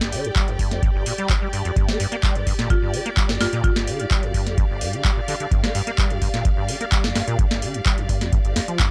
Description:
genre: acid house.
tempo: 128 BPM.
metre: 4/4.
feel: straight.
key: G minor pentatonic.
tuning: A4 = 440 Hz.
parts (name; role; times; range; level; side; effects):
acid bass, saw; riff; 0.0-8.9 s; G1 to Bb3; -29 LUFS; equal; overdrive, ensemble chorus, sidechain pumping, tape echo.
booming analog drum machine; drums; 0.0-8.9 s; handclaps, hi-hat, snare drum; -28 LUFS; equal; overdrive.
rich studio string section; texture; 0.0-8.9 s; G4 to G5; -32 LUFS; equal; sidechain pumping.
electronic kick drum; drums; 0.4-8.9 s; none; -23 LUFS; equal; overdrive.
marimba with hard mallets; melody; 2.7-4.1 s; F4; -31 LUFS; equal; tape echo.
room: little or no reverb.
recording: dry, gritty hardware recording, cassette tape.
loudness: -21 LUFS.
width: mono.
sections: 0.0-8.9 A section.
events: filter sweep on acid bass 0.0-8.9.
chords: 0.0 G5.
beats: 0.36 0.83 1.30 | 1.76 2.23 2.70 3.17 | 3.64 4.11 4.58 5.05 | 5.51 5.98 6.45 6.92 | 7.39 7.86 8.33 8.80.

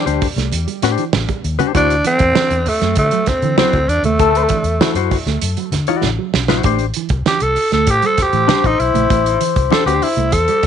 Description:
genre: funk.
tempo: 98 BPM.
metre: 4/4.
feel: straight.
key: A dorian.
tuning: A4 = 440 Hz.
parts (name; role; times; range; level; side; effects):
breathy alto saxophone; melody; 0.0-10.7 s; G3 to A4; -17 LUFS; right 1 dB; tape echo.
semi-hollow electric guitar; accompaniment; 0.0-10.1 s; D4 to D5; -18 LUFS; left 17 dB; none.
mellow electric guitar; riff; 0.0-10.7 s; E3 to A3; -24 LUFS; right 11 dB; phaser.
vintage muted fingered electric bass; bass; 0.1-10.7 s; A1 to D3; -20 LUFS; left 1 dB; none.
warm soul drum kit; drums; 0.1-10.7 s; hi-hat, kick drum, snare drum; -20 LUFS; right 4 dB; none.
congas; percussion; 0.2-10.7 s; none; -27 LUFS; right 6 dB; none.
clear trombone; second line; 4.2-10.7 s; A4 to C5; -20 LUFS; left 15 dB; tape echo.
room: small room ambience.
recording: 1960s-style stereo with parts hard left and right, nothing above 10.9 kHz.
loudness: -13 LUFS.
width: side -8 dB against mid.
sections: 0.0-6.7 A section; 6.7-10.7 B section.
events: band accent 4.2-6.7; drum fill 6.0-6.7; alto saxophone solo 6.7-10.7.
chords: 0.0 Am11; 1.7 D9; 6.7 Am11.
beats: 0.53 1.14 | 1.75 2.36 2.98 3.59 | 4.20 4.81 5.43 6.04 | 6.65 7.26 7.88 8.49 | 9.10 9.72 10.33.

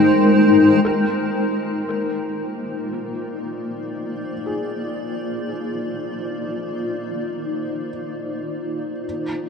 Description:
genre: ambient.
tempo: free time.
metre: none.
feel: none.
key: Bb mixolydian.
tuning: A4 = 440 Hz.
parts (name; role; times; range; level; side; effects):
granular cloud pad; sustained chords; 0.0-9.5 s; Ab3 to G5; -19 LUFS; left 1 dB; built-in reverb.
felt-muted upright piano; arpeggios; 0.0-9.1 s; Ab4 to Bb4; -33 LUFS; left 1 dB; ping-pong delay.
analog drone; drone; 0.0-1.0 s; none; barely audible; none; none.
room: wet huge ambient reverb, RT60 7.7 s.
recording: dark, warm production.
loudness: -20 LUFS.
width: side -6 dB against mid.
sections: 0.9-9.5 A section.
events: fade-in on ambient pad 0.9-9.5; fade-in on felt piano 0.9-9.5.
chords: 0.0 Abmaj7; 0.9 Bb7.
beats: free time.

